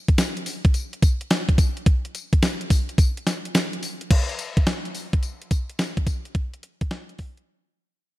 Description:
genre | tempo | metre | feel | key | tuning
R&B | 107 BPM | 4/4 | swing 66% on 16ths | none | none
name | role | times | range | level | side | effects
crisp 8-bit digital drum machine | drums | 0.1-7.5 s | crash cymbal, hi-hat, kick drum, snare drum, tambourine | -20 LUFS | equal | overdrive
room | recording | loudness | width
light reverb, digital ambience | none | -21 LUFS | side -17 dB against mid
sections
0.0-4.1 A section; 4.1-8.2 B section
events
fade-out 4.1-8.2; break 7.5-8.2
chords
none

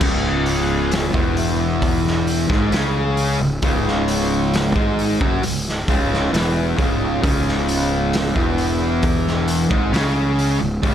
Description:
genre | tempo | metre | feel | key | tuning
stoner and doom metal | 67 BPM | 4/4 | straight | C# minor | A4 = 442 Hz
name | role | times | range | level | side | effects
fuzz guitar | riff | 0.0-10.9 s | C#2 to C#4 | -19 LUFS | equal | distortion
fuzz fingered electric bass | bass | 0.0-10.9 s | C#1 to C#2 | -23 LUFS | equal | overdrive, tube saturation
raw garage drum kit | drums | 0.0-10.9 s | crash cymbal, hi-hat, kick drum, snare drum | -22 LUFS | equal | none
room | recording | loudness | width
light reverb, studio reverb | none | -16 LUFS | side -10 dB against mid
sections
0.0-10.9 A section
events
none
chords
0.0 C#m

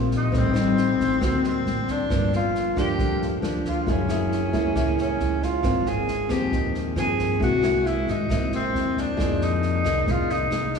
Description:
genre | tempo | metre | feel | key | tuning
bossa nova | 136 BPM | 4/4 | straight | unclear | A4 = 440 Hz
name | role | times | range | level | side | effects
nylon-string guitar | accompaniment | 0.0-10.8 s | G2 to Ab4 | -25 LUFS | left 2 dB | none
upright bass | bass | 0.0-10.8 s | Gb1 to G2 | -28 LUFS | equal | none
open jazz drum kit | drums | 0.1-10.8 s | kick drum, rim click, snare drum | -31 LUFS | right 1 dB | none
breathy tenor saxophone | melody | 0.2-10.8 s | C4 to Ab4 | -25 LUFS | left 1 dB | none
room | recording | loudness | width
wet cathedral reverb, RT60 4.7 s | recorded in a church or concert hall, small room reverb | -21 LUFS | side -6 dB against mid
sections
0.0-10.8 A section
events
none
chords
0.3 Am7b5; 1.2 D7b13; 2.1 Gm7; 3.9 Gb9; 5.6 Ab69; 7.4 C7alt; 9.2 Fm7

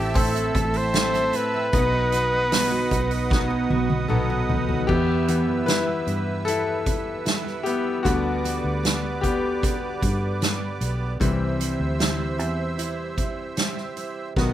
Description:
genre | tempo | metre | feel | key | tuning
pop ballad | 76 BPM | 4/4 | straight | E minor | A4 = 440 Hz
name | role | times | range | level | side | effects
clear flugelhorn | melody | 0.0-4.1 s | G4 to C5 | -24 LUFS | equal | none
bright grand piano | accompaniment | 0.0-14.5 s | A2 to E5 | -27 LUFS | left 4 dB | slapback echo
musette accordion | sustained chords | 0.0-14.5 s | C4 to E6 | -31 LUFS | right 4 dB | none
picked steel-string acoustic guitar | arpeggios | 0.0-14.5 s | E2 to A4 | -31 LUFS | right 5 dB | none
vintage muted fingered electric bass | bass | 0.0-14.5 s | A1 to G2 | -28 LUFS | equal | none
soft-mallet drum kit | drums | 0.1-14.5 s | crash cymbal, hi-hat, kick drum, snare drum, toms | -25 LUFS | equal | none
room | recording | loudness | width
little or no reverb | none | -21 LUFS | side -12 dB against mid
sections
0.0-4.9 A section; 4.9-14.5 B section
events
drum fill 3.3-4.9, 14.4; grand piano solo 4.9-14.5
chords
0.0 Am; 1.7 B; 4.9 Em; 8.1 G/D; 11.2 C

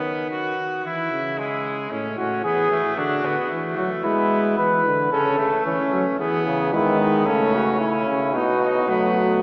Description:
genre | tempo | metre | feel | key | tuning
classical, imitative canzona for brass ensemble | 112 BPM | 4/4 | straight | unclear | A4 = 440 Hz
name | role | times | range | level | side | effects
bright trumpet | second line | 0.0-9.4 s | G#3 to F#4 | -26 LUFS | equal | none
mellow trombone | accompaniment | 0.0-9.4 s | A2 to B3 | -25 LUFS | equal | none
dark trumpet | melody | 2.2-9.1 s | C#4 to B4 | -21 LUFS | equal | none
clear euphonium | bass | 6.5-9.4 s | B2 to F#3 | -21 LUFS | equal | none
room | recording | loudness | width
wet cathedral reverb, RT60 4.3 s | heard from further back in the room, small speaker sound | -19 LUFS | side -35 dB against mid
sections
0.0-9.4 A section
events
none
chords
0.0 B/D#; 0.8 E; 1.9 A; 3.0 Bm/D; 4.0 E/G#; 5.1 A/C#; 6.2 E; 7.3 F#m/C#; 8.3 B

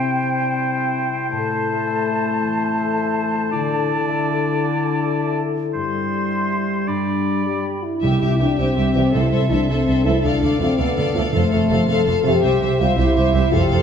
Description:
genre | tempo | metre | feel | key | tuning
cinematic | 108 BPM (dotted quarters) | 12/8 | straight | C major | A4 = 440 Hz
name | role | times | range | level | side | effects
bright oboe | second line | 0.0-7.8 s | C5 to D5 | -26 LUFS | right 2 dB | none
dark clarinet | second line | 0.0-7.8 s | D4 to E4 | -28 LUFS | left 9 dB | none
mellow silver concert flute | second line | 0.0-7.8 s | G5 to C6 | -25 LUFS | equal | none
mellow French horn section | sustained chords | 0.0-13.8 s | D3 to A4 | -22 LUFS | left 2 dB | none
concert harp | arpeggios | 0.0-13.8 s | F2 to E5 | -26 LUFS | left 4 dB | none
warm symphonic violin section | melody | 8.0-13.8 s | E5 to F5 | -27 LUFS | left 2 dB | none
warm symphonic violin section | second line | 8.0-13.8 s | G4 to D5 | -28 LUFS | left 3 dB | none
rich symphonic viola section | accompaniment | 8.0-13.8 s | G4 to A4 | -28 LUFS | right 1 dB | none
rich symphonic cello section | bass | 8.0-13.8 s | C2 to F2 | -24 LUFS | right 4 dB | none
warm symphonic double bass section | bass | 8.0-13.8 s | F1 to D2 | -23 LUFS | right 3 dB | none
timpani | percussion | 8.0-9.6 s | C3 | -24 LUFS | equal | none
clear trombone section | sustained chords | 8.4-13.4 s | C3 to A3 | -28 LUFS | right 4 dB | none
room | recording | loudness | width
wet recital hall reverb, RT60 1.4 s | recorded in a church or concert hall | -17 LUFS | side -7 dB against mid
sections
0.0-8.0 A section; 8.0-13.8 B section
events
build-up 0.0-8.0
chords
0.0 C; 1.3 Am; 3.5 Dsus2; 5.7 C/G; 6.9 G; 8.0 C; 9.1 Am/C; 10.2 Dm; 11.3 F; 12.4 C

